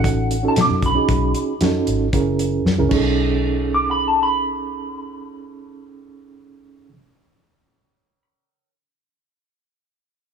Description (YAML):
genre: straight-eighth soul blues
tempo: 115 BPM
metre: 4/4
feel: straight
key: B mixolydian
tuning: A4 = 442 Hz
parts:
  - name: electric guitar through a small old amp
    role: melody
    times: 0.0-8.2 s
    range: F#5 to D6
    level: -21 LUFS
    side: equal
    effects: lush chorus
  - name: mellow reed electric piano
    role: accompaniment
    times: 0.0-6.9 s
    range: C#4 to A#4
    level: -22 LUFS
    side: right 5 dB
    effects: fast tremolo
  - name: vintage muted fingered electric bass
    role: bass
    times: 0.0-6.9 s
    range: F#1 to B2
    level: -22 LUFS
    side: left 2 dB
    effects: none
  - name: damped 70s drum kit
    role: drums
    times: 0.0-3.0 s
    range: crash cymbal, hi-hat, kick drum, snare drum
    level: -24 LUFS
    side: left 1 dB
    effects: none
room: light reverb, small room ambience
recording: studio ambience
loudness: -16 LUFS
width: side -7 dB against mid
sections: 0.0-3.2 A section; 3.2-7.4 B section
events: drum fill 2.7-3.2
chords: 0.0 B9; 2.1 F#9; 2.9 B13